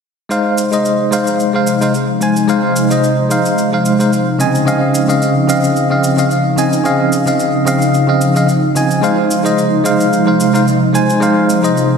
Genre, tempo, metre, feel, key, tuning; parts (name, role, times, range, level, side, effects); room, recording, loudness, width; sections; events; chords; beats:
sunset chillout; 110 BPM; 4/4; swing 54% on 16ths; Ab major; A4 = 440 Hz
bell-like tine electric piano; accompaniment; 0.3-12.0 s; Db3 to Ab5; -13 LUFS; equal; medium stereo tremolo, auto-pan, low-pass filter, analog delay
ethereal airy pad; sustained chords; 0.8-12.0 s; C3 to Eb4; -16 LUFS; equal; ensemble chorus, built-in reverb
shaker; drums; 0.3-11.9 s; -26 LUFS; right 1 dB
wet lush hall reverb, RT60 1.8 s, digital ambience; dreamy mix soaked in reverb; -11 LUFS; side -6 dB against mid
0.3-12.0 A section
filter sweep on ambient pad 0.3-12.0
0.3 Ab6; 4.4 Dbmaj9; 9.0 Ab6
| 0.31 0.85 1.40 1.95 | 2.49 3.04 3.58 4.13 | 4.67 5.22 5.76 6.31 | 6.85 7.40 7.95 8.49 | 9.04 9.58 10.13 10.67 | 11.22 11.76